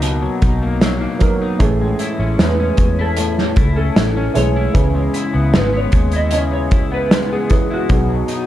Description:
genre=indie pop, bedroom pop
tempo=76 BPM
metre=4/4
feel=straight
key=unclear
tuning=A4 = 440 Hz
part: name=dark upright piano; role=accompaniment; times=0.0-8.5 s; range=E3 to A#4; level=-24 LUFS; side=right 6 dB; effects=none
part: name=electric guitar at the edge of break-up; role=accompaniment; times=0.0-8.5 s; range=A2 to E4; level=-21 LUFS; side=left 4 dB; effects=analog chorus, warbly pitch drift
part: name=vintage muted fingered electric bass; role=bass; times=0.0-8.2 s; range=G#1 to E2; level=-19 LUFS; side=equal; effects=none
part: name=loose indie drum kit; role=drums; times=0.0-8.5 s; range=hi-hat, kick drum, snare drum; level=-16 LUFS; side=equal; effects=none
part: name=clean lap steel guitar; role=melody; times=2.4-8.5 s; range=F#4 to D#5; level=-22 LUFS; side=equal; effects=ensemble chorus
room=light reverb, small room ambience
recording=dark, warm production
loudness=-14 LUFS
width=side -13 dB against mid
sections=0.0-8.5 A section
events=electric slide guitar solo 0.0-8.5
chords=0.0 Bmaj7; 1.6 Amaj7; 4.8 C#m7; 7.9 G#m7/B

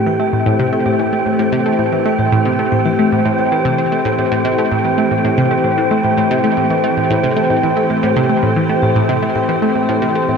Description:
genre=ambient, sequencer-driven space music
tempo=113 BPM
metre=4/4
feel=straight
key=unclear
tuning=A4 = 435 Hz
part: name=evolving wavetable pad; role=sustained chords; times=0.0-10.4 s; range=E3 to C5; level=-17 LUFS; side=left 1 dB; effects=chorus, built-in reverb
part: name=vibraphone with soft mallets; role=arpeggios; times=0.0-10.4 s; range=G4 to G5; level=-20 LUFS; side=equal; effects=auto-pan, tape echo
part: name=wind-like tuned noise texture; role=texture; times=0.0-10.4 s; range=G5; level=-24 LUFS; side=right 4 dB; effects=built-in reverb
part: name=analog pluck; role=riff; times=0.1-10.4 s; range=A2 to C4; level=-17 LUFS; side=right 1 dB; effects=chorus, phaser, tape echo
room=wet huge ambient reverb, RT60 8.5 s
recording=cassette tape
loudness=-13 LUFS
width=side -6 dB against mid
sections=0.0-10.4 A section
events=none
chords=0.0 Am7

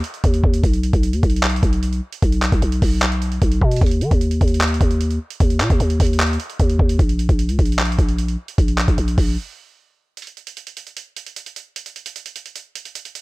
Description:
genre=hip hop, trap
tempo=151 BPM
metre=4/4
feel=half-time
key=unclear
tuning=A4 = 442 Hz
part: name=growling 808-style bass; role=bass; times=0.0-9.4 s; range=Bb1 to Eb3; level=-18 LUFS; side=equal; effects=none
part: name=dusty soul sampler-style drum kit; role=drums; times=0.0-13.2 s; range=handclaps, hi-hat, kick drum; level=-19 LUFS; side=equal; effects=none
room=little or no reverb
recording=none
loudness=-16 LUFS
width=side -22 dB against mid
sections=0.0-10.2 A section; 10.2-13.2 B section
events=break 9.4-10.2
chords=none

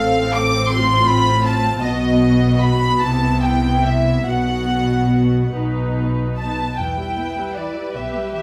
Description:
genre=classical, slow romantic movement for string orchestra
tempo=46-55 BPM (dotted quarters)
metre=6/8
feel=rubato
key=E minor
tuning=A4 = 440 Hz
part: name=warm studio violin section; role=melody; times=0.0-8.4 s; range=D5 to D6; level=-24 LUFS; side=equal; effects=none
part: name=clear studio violin section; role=second line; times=0.0-8.4 s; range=D5 to D6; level=-27 LUFS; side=equal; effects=none
part: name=warm studio viola section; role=accompaniment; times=0.0-8.4 s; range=E3 to B4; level=-23 LUFS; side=equal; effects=none
part: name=dark chamber double bass section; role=bass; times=0.0-8.4 s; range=A1 to E2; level=-24 LUFS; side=equal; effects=none
part: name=warm studio cello section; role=bass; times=0.0-8.4 s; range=A2 to G4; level=-26 LUFS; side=equal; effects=none
room=moderate recital hall reverb, RT60 1.3 s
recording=none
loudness=-18 LUFS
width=mono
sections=0.0-6.8 A section; 6.8-8.4 B section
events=none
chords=0.0 F/A; 1.8 B; 3.0 C; 4.3 B5; 5.5 B; 6.8 Em

